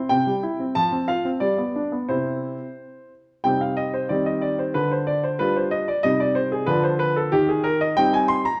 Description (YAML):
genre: classical-period piano sonatina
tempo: 92 BPM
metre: 2/4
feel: straight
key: C major, C minor from 3.4 s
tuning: A4 = 440 Hz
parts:
  - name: clear baby grand piano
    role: solo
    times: 0.0-8.6 s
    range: C3 to C6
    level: -22 LUFS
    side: equal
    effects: none
room: moderate recital hall reverb, RT60 1.5 s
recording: dark, warm production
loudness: -22 LUFS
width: mono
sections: 0.0-3.4 A section; 3.4-8.6 B section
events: none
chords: 0.0 C; 0.8 F; 1.4 G; 2.1 C; 3.4 Cm; 4.1 Cm/Eb; 4.8 G5/D; 6.0 Cm; 6.7 Dm6; 7.3 Cm/Eb